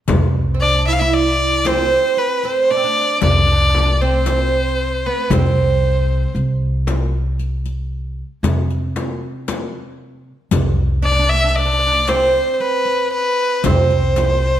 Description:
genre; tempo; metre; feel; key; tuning
Arabic maqam ensemble; 115 BPM (eighths); 10/8; straight; C maqam ajam; A4 = 440 Hz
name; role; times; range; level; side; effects
upright bass; bass; 0.1-14.6 s; C2 to C3; -19 LUFS; equal; none
darbuka; percussion; 0.1-13.9 s; none; -22 LUFS; right 1 dB; none
frame drum; percussion; 0.1-14.4 s; none; -24 LUFS; left 3 dB; none
riq; percussion; 0.1-14.4 s; none; -27 LUFS; left 7 dB; none
oud; second line; 0.5-14.6 s; B3 to E4; -21 LUFS; right 6 dB; none
rich violin; melody; 0.6-14.6 s; B4 to F5; -17 LUFS; left 2 dB; none
room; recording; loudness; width
light reverb; none; -14 LUFS; side -11 dB against mid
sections
0.1-14.6 A section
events
none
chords
none

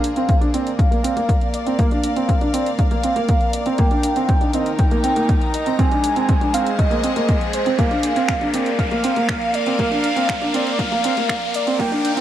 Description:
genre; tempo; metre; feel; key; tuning
piano and strings electronica; 120 BPM; 4/4; straight; Bb mixolydian; A4 = 440 Hz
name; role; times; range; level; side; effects
warm velvety synth lead; melody; 0.0-12.2 s; C5 to Ab5; -23 LUFS; right 1 dB; chorus
rich studio string section; sustained chords; 0.0-12.2 s; Eb3 to Bb5; -26 LUFS; left 1 dB; sidechain pumping
warm upright piano; riff; 0.0-12.2 s; Bb3 to D4; -22 LUFS; right 2 dB; none
warm sub bass; bass; 0.0-12.2 s; Eb1 to D2; -48 LUFS; equal; none
deep house drum kit; drums; 0.0-12.2 s; finger snaps, hi-hat; -30 LUFS; equal; overdrive
riser; sound effects; 1.5-12.2 s; none; -30 LUFS; left 1 dB; none
electronic kick drum; drums; 0.3-11.9 s; none; -19 LUFS; equal; overdrive
room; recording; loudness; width
light reverb, digital ambience; dark, warm production, high-pass filter; -16 LUFS; side -11 dB against mid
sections
0.0-12.2 A section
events
build-up 0.0-12.2; filter sweep 0.0-12.2; riser 1.5-12.2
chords
0.0 Bb; 3.8 Eb; 5.8 Ab; 7.8 Bb

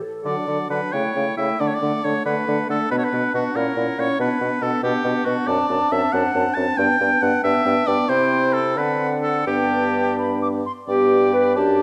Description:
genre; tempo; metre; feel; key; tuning
quick classical-period movement for wind quintet; 84-95 BPM (dotted quarters); 6/8; rubato; D major, G major from 5.5 s; A4 = 441 Hz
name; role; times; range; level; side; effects
clear clarinet; accompaniment; 0.0-11.8 s; D4 to B4; -27 LUFS; equal; none
silver concert flute; melody; 0.2-11.8 s; F#5 to D6; -31 LUFS; equal; none
bright oboe; second line; 0.2-11.8 s; F#4 to A5; -25 LUFS; equal; none
mellow French horn; accompaniment; 0.2-11.8 s; F#3 to D4; -29 LUFS; equal; none
warm bassoon; bass; 0.3-11.8 s; F#2 to D3; -26 LUFS; equal; none
room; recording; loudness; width
moderate recital hall reverb, RT60 1.6 s; none; -20 LUFS; mono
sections
0.2-10.9 A section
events
none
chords
0.2 D; 0.9 A7/C#; 1.6 D; 2.9 Bm; 3.6 F#7/A#; 4.2 Bm; 5.5 D7/F#; 6.8 G; 8.1 C; 8.8 D7; 9.5 G

